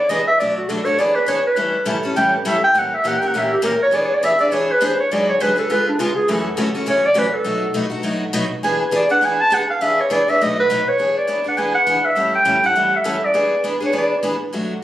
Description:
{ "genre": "jazz", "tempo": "203 BPM", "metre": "4/4", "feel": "swing 58% on 8ths", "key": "E mixolydian", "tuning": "A4 = 439 Hz", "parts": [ { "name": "warm clarinet", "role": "melody", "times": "0.0-14.2 s", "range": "D4 to A5", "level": "-16 LUFS", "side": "equal", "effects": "none" }, { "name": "picked steel-string acoustic guitar", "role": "accompaniment", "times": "0.1-14.7 s", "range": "F#2 to A#4", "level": "-21 LUFS", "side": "left 1 dB", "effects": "none" } ], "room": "moderate studio reverb, RT60 0.9 s", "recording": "recorded on a phone in the room, club reverb", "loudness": "-15 LUFS", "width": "side -13 dB against mid", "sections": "0.0-11.0 A section; 11.0-14.8 B section", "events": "clarinet solo 0.0-11.0", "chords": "0.4 Bm7; 1.0 E7; 1.6 A7; 2.7 A#dim7; 3.9 E7; 5.1 G#m7b5; 5.7 C#7; 6.3 F#m7; 7.5 B7; 8.6 E7; 10.4 B7; 11.0 E7; 12.2 A7; 13.4 E7" }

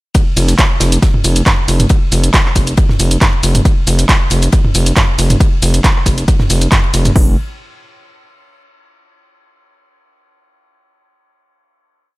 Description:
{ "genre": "driving peak-time techno", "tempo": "137 BPM", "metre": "4/4", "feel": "straight", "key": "unclear", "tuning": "A4 = 440 Hz", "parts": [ { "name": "damped 70s drum kit", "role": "drums", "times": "0.1-7.0 s", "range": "ride cymbal, snare drum", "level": "-29 LUFS", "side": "left 2 dB", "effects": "high-pass filter on cymbals, high-pass filter on snare, high-pass filter on room" }, { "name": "punchy analog drum machine", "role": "drums", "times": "0.1-7.1 s", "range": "handclaps, hi-hat, ride cymbal, shaker, toms", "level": "-15 LUFS", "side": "right 1 dB", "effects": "none" }, { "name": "techno drum kit", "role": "drums", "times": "0.1-7.3 s", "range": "hi-hat, kick drum", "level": "-12 LUFS", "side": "equal", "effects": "none" }, { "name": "gritty driven synth bass", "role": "bass", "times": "0.4-7.4 s", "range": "F1", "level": "-12 LUFS", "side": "equal", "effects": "sidechain pumping" } ], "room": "little or no reverb", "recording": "none", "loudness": "-10 LUFS", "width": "side -21 dB against mid", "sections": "0.1-7.2 drop; 7.2-8.9 final note", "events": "drop 0.1-7.2", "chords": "none" }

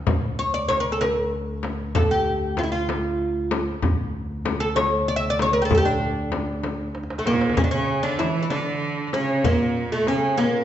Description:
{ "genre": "Persian modal ensemble", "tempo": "64 BPM (dotted quarters)", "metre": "6/8", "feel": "straight", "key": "D avaz esfahan", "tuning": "A4 = 435 Hz", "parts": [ { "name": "warm double bass", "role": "drone", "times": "0.0-7.6 s", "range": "D2", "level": "-30 LUFS", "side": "equal", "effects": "none" }, { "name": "frame drum", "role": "percussion", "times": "0.1-10.5 s", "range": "none", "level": "-29 LUFS", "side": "left 5 dB", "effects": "none" }, { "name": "tombak", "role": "percussion", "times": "0.1-10.5 s", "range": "none", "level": "-28 LUFS", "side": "right 1 dB", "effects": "none" }, { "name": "oud", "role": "melody", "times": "0.4-10.6 s", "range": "A3 to E5", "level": "-22 LUFS", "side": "equal", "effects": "none" }, { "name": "bright cello", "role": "second line", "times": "7.3-10.6 s", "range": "B2-49c to E3", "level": "-25 LUFS", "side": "right 4 dB", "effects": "none" } ], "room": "wet recital hall reverb, RT60 1.5 s", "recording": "nothing above 7.9 kHz", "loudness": "-20 LUFS", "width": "side -11 dB against mid", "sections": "0.0-7.6 A section; 7.6-10.6 B section", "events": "drum fill 6.9-7.6", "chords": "none" }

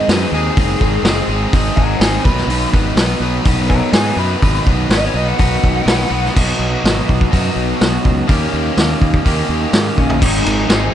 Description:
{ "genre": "classic rock", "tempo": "124 BPM", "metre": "4/4", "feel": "straight", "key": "unclear", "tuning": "A4 = 439 Hz", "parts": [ { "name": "lead guitar through a small cranked amp", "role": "melody", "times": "0.0-6.3, 10.0-10.9 s", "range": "Db4 to B5", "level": "-21 LUFS", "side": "left 2 dB", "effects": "overdrive" }, { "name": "crunchy overdriven guitar", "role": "riff", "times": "0.0-10.9 s", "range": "Ab2 to B4", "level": "-18 LUFS", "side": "equal", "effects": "none" }, { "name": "fuzz fingered electric bass", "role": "bass", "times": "0.1-10.9 s", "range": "Gb1 to Ab2", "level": "-19 LUFS", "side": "equal", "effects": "overdrive" }, { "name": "vintage drum kit", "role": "drums", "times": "0.1-10.8 s", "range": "crash cymbal, hi-hat, kick drum, ride cymbal, snare drum, toms", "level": "-16 LUFS", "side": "equal", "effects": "none" } ], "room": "little or no reverb", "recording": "nothing above 10.9 kHz", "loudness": "-12 LUFS", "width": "side -10 dB against mid", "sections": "0.0-6.4 A section; 6.4-10.2 B section", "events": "lead electric guitar solo 0.0-6.4; drum fill 10.0", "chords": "0.0 Ab; 2.3 B; 8.3 Eb7; 10.2 Ab" }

